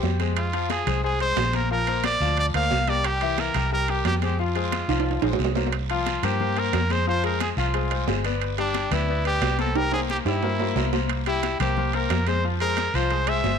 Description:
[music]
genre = latin, salsa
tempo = 179 BPM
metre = 4/4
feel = straight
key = F minor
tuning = A4 = 440 Hz
[part]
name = bright concert grand piano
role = accompaniment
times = 0.0-13.6 s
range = E3 to G5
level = -28 LUFS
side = left 13 dB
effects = none
[part]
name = vintage muted fingered electric bass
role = bass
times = 0.0-13.6 s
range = G1 to G2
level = -26 LUFS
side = right 1 dB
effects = none
[part]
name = congas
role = percussion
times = 0.0-13.6 s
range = none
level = -34 LUFS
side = left 13 dB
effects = none
[part]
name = guiro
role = percussion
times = 0.0-13.6 s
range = none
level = -35 LUFS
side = right 17 dB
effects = none
[part]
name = timbales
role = percussion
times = 0.0-13.6 s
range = none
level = -30 LUFS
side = right 15 dB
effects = none
[part]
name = bright trumpet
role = melody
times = 0.4-13.6 s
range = D4 to F5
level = -27 LUFS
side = right 2 dB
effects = none
[sound]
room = light reverb, studio reverb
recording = 1960s-style stereo with parts hard left and right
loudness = -21 LUFS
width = side -7 dB against mid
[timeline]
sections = 0.0-5.7 A section; 5.7-13.6 B section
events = drum fill 4.9-5.7, 9.8-11.1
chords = 0.4 Fm; 1.7 Bbadd9; 3.0 C7; 4.4 Fm; 5.7 C7sus4; 7.1 Fmadd9; 8.4 G; 9.8 C7; 12.4 Fmadd9

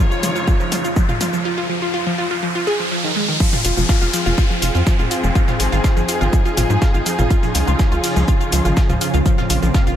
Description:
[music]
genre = melodic techno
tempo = 123 BPM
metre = 4/4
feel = straight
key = F minor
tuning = A4 = 440 Hz
[part]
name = dark symphonic string section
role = sustained chords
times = 0.0-10.0 s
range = Db3 to Db5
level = -25 LUFS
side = equal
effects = sidechain pumping
[part]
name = wide unison pluck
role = arpeggios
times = 0.0-10.0 s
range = Eb3 to F5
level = -22 LUFS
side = equal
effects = sidechain pumping, ping-pong delay
[part]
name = bowed-like drone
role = drone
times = 0.2-10.0 s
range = F2 to F3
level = -30 LUFS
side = right 3 dB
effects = built-in reverb, sidechain pumping
[part]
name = riser and downlifter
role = sound effects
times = 0.0-7.3 s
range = none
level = -25 LUFS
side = equal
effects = none
[part]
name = house drum kit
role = drums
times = 0.1-10.0 s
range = crash cymbal, hi-hat, shaker, toms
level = -25 LUFS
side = left 1 dB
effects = sidechain pumping on perc, sidechain pumping on toms, sidechain pumping on hats, sidechain pumping on cymbals
[part]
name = electronic kick drum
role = drums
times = 0.5-9.8 s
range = none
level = -16 LUFS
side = equal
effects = none
[part]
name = dusty soul sampler-style drum kit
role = drums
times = 3.4-10.0 s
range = hi-hat, snare drum, tambourine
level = -33 LUFS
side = left 1 dB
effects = none
[part]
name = tight sequencer bass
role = bass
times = 3.6-9.9 s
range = F1 to Ab2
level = -18 LUFS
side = equal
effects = sidechain pumping
[sound]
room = light reverb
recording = none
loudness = -15 LUFS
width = side -10 dB against mid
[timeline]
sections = 0.0-3.4 A section; 3.4-10.0 B section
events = build-up 0.0-3.4; drum fill 0.0-1.5; riser 0.0-3.4; break 1.5-3.4; drop 3.4-10.0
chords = 0.0 Dbadd9; 1.5 N.C.; 3.4 Fm; 5.4 Ab; 7.3 Dbadd9; 9.3 Bbmadd9

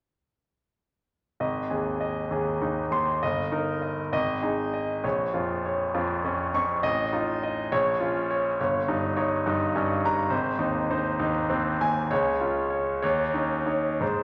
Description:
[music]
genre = classical, romantic character piece for solo piano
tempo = 60-71 BPM (dotted quarters)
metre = 6/8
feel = rubato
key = Ab major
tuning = A4 = 440 Hz
[part]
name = bright concert grand piano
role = solo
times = 1.4-14.2 s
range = G1 to Db6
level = -26 LUFS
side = equal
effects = none
[sound]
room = wet recital hall reverb, RT60 1.5 s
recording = none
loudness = -27 LUFS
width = mono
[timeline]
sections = 1.4-14.2 A section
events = none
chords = 1.4 Ab; 3.2 Eb/G; 4.1 Ab5; 5.0 Bbm; 6.8 F7/A; 7.7 Bbm; 8.6 Eb7/G; 10.3 Ab; 12.1 Db; 13.0 Dbsus2/Eb

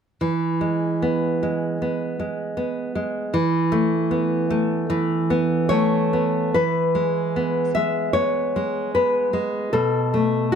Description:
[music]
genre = romantic piece for solo classical guitar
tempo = 76 BPM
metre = 4/4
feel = rubato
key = E major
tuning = A4 = 441 Hz
[part]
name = nylon-string guitar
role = solo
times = 0.2-10.6 s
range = B2 to E5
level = -19 LUFS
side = equal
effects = none
[sound]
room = light reverb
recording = close, detailed microphones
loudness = -20 LUFS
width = side -7 dB against mid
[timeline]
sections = 0.2-6.6 A section; 6.6-10.6 B section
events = none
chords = 0.2 E; 3.3 Aadd9/E; 6.6 E; 9.7 B7(no3)

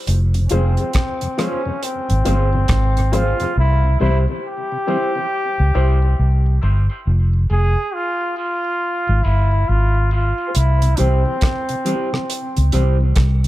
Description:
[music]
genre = dub reggae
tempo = 69 BPM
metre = 4/4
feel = swing 63% on 16ths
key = F harmonic minor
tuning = A4 = 440 Hz
[part]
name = vintage muted fingered electric bass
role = bass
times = 0.1-13.5 s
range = F1 to Db2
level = -15 LUFS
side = equal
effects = none
[part]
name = damped 70s drum kit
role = drums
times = 0.1-3.5, 10.5-13.5 s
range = hi-hat, kick drum, rim click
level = -21 LUFS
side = equal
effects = none
[part]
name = mellow tonewheel organ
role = accompaniment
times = 0.3-13.5 s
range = F2 to C4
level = -27 LUFS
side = left 1 dB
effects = slow rotary speaker, high-pass filter, tape echo
[part]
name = brilliant trombone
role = melody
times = 0.5-12.7 s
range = C4 to Ab4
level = -22 LUFS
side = equal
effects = tape echo
[part]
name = mellow electric guitar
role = accompaniment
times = 0.5-13.0 s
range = E4 to C5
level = -28 LUFS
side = right 2 dB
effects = high-pass filter, tape echo
[part]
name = warm upright piano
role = stabs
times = 0.5-7.0 s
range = E4 to C5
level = -29 LUFS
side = left 5 dB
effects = high-pass filter, tape echo
[sound]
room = small room ambience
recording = echo-heavy mix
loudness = -15 LUFS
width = side -16 dB against mid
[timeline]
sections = 0.1-13.5 A section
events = part muted 3.6-10.5; filter sweep 3.6-10.5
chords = 0.1 Fm; 3.6 C; 7.1 Fm; 10.5 C

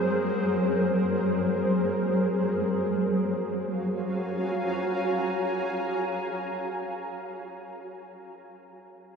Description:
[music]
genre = ambient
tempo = free time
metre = none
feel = none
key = Gb lydian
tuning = A4 = 440 Hz
[part]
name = granular cloud pad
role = solo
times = 0.0-7.6 s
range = Gb3 to Bb5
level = -26 LUFS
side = equal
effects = built-in reverb, tape echo
[sound]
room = wet huge ambient reverb, RT60 7.4 s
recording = cassette tape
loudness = -25 LUFS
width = side -6 dB against mid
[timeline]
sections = 0.0-2.8 A section; 2.8-6.8 B section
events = none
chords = 0.0 Abadd9/Gb; 2.8 Gbmaj7

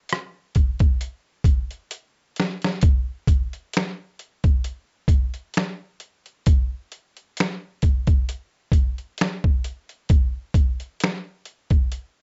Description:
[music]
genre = R&B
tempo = 66 BPM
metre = 4/4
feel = swing 54% on 16ths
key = none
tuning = none
[part]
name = boom bap sampler-style drum kit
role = drums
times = 0.1-12.1 s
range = finger snaps, hi-hat, kick drum, rim click, snare drum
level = -21 LUFS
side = equal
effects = none
[sound]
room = little or no reverb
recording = dark, warm production, nothing above 7.8 kHz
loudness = -23 LUFS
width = mono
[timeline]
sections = 0.0-2.8 A section; 2.8-12.2 B section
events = drum fill 1.9-2.8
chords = none

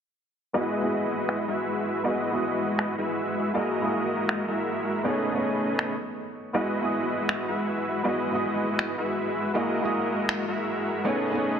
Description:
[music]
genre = future bass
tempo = 160 BPM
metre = 4/4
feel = swing 54% on 16ths, half-time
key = E major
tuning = A4 = 440 Hz
[part]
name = felt-muted upright piano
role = accompaniment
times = 0.5-11.6 s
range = A3 to D#6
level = -29 LUFS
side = right 1 dB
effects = low-pass filter, tape echo
[part]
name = dense compressed supersaw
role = riff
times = 0.5-11.6 s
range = G#3 to E5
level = -26 LUFS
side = equal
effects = low-pass filter, tape echo
[part]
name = electronic finger snaps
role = drums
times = 1.3-10.4 s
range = none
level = -29 LUFS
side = equal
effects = low-pass filter on snare
[sound]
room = moderate lush hall reverb, RT60 2.1 s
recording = none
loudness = -24 LUFS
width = side -7 dB against mid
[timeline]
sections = 0.5-11.6 A section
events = filter sweep on drum 0.5-11.6; filter sweep on felt piano 0.5-11.6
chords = 0.5 Emaj9; 3.5 F#13; 5.0 B13; 6.5 Emaj9; 9.5 F#13; 11.0 B13

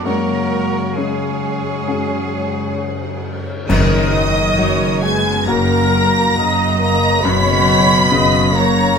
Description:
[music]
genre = cinematic, emotional film score for orchestra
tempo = 67 BPM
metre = 4/4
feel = rubato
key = F# major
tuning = A4 = 445 Hz
[part]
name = rich symphonic violin section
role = melody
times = 0.0-9.0 s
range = F#5 to B6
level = -22 LUFS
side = right 1 dB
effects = none
[part]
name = dark cor anglais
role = second line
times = 0.0-3.2 s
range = C#4 to F#4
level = -27 LUFS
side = right 5 dB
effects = none
[part]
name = warm symphonic violin section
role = second line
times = 0.0-9.0 s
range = C#5 to B5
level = -23 LUFS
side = right 2 dB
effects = none
[part]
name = clear grand piano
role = accompaniment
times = 0.0-9.0 s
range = F#2 to A#4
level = -23 LUFS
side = left 3 dB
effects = none
[part]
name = rich symphonic viola section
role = accompaniment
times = 0.0-9.0 s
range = G#3 to D#5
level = -23 LUFS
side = right 1 dB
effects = none
[part]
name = concert harp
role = arpeggios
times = 0.0-9.0 s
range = F#2 to C#6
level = -25 LUFS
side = left 12 dB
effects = none
[part]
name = rich studio double bass section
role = bass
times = 0.0-8.9 s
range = F#1 to F#2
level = -22 LUFS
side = right 3 dB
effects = none
[part]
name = rich symphonic cello section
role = bass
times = 0.0-8.9 s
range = F#2 to A#4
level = -25 LUFS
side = right 2 dB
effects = none
[part]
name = mellow French horn section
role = sustained chords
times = 0.1-9.0 s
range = B2 to A#3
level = -21 LUFS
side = left 4 dB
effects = none
[part]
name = cymbal swell, clash cymbals and concert bass drum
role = percussion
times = 0.1-5.4 s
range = none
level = -25 LUFS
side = right 1 dB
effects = none
[part]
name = mellow hollow silver concert flute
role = second line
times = 3.7-9.0 s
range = D#5 to B5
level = -23 LUFS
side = left 1 dB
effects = none
[sound]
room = light reverb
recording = close, detailed microphones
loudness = -13 LUFS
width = side -6 dB against mid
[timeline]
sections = 0.0-3.7 A section; 3.7-9.0 B section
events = band accent 3.7-4.6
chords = 0.1 C#sus4/F#; 3.7 F#

